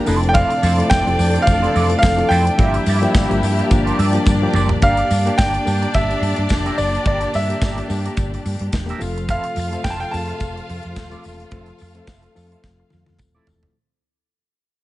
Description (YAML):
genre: disco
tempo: 108 BPM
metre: 4/4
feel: swing 56% on 16ths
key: G dorian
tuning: A4 = 440 Hz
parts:
  - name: warm studio violin section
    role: second line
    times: 0.0-13.2 s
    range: D4 to F5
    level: -27 LUFS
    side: left 1 dB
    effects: none
  - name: mellow reed electric piano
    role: accompaniment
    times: 0.0-13.8 s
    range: E3 to Bb4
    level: -24 LUFS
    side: left 2 dB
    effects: fast tremolo
  - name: dark studio string section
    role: sustained chords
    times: 0.0-13.7 s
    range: Bb2 to A4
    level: -28 LUFS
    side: equal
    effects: none
  - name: clean electric guitar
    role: accompaniment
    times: 0.1-13.7 s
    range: Bb3 to E5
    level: -28 LUFS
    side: right 4 dB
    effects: wah
  - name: hollow-body short-scale fingered electric bass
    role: bass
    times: 0.1-13.7 s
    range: Eb1 to G2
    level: -21 LUFS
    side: equal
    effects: tube saturation
  - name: modern studio drum kit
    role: drums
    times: 0.1-13.7 s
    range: hi-hat, kick drum, snare drum, toms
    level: -21 LUFS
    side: equal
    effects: none
  - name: tambourine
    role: percussion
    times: 0.1-13.6 s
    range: none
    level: -38 LUFS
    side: left 6 dB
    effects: none
  - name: clear baby grand piano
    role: melody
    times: 0.3-13.1 s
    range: D5 to A5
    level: -21 LUFS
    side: right 1 dB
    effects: none
room: light reverb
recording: nothing above 10.6 kHz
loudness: -15 LUFS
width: side -16 dB against mid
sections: 0.0-4.8 A section; 4.8-13.8 B section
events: drum fill 4.3-4.8, 12.6-13.8; fade-out 4.8-13.8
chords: 0.1 Fmaj7; 2.6 Gm7; 4.8 Gm; 9.0 Fmaj7